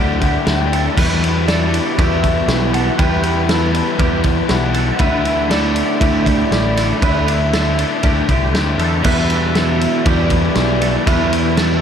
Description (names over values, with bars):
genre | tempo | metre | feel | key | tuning
rock, shoegaze and dream pop | 119 BPM | 4/4 | straight | E minor | A4 = 440 Hz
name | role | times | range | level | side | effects
soft octave-layered synth lead | melody | 0.0-11.8 s | B4 to G5 | -23 LUFS | left 1 dB | chorus, ping-pong delay
twangy electric guitar | arpeggios | 0.0-11.8 s | G4 to B4 | -25 LUFS | right 7 dB | ensemble chorus, ping-pong delay
electric guitar through a small old amp | riff | 0.0-11.8 s | E2 to F#4 | -24 LUFS | right 8 dB | reverse reverb
overdriven semi-hollow guitar | riff | 0.0-11.8 s | D3 to E4 | -20 LUFS | left 7 dB | wide subtle chorus
growling picked electric bass | bass | 0.0-11.8 s | A1 to E2 | -19 LUFS | equal | overdrive
loose indie drum kit | drums | 0.2-11.7 s | crash cymbal, kick drum, ride cymbal, snare drum | -19 LUFS | equal | none
raw garage guitar | riff | 9.0-11.8 s | E2 to E3 | -22 LUFS | equal | overdrive, wide subtle chorus
room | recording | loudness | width
moderate huge ambient reverb, RT60 8.1 s | dreamy mix soaked in reverb | -13 LUFS | side -8 dB against mid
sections
0.0-11.8 A section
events
none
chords
0.0 Dsus2; 1.0 Emadd9; 5.0 Dsus2; 9.0 Emadd9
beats
0.47 | 0.97 1.48 1.98 2.48 | 2.99 3.49 4.00 4.50 | 5.01 5.51 6.02 6.52 | 7.03 7.53 8.04 8.54 | 9.04 9.55 10.05 10.56 | 11.06 11.57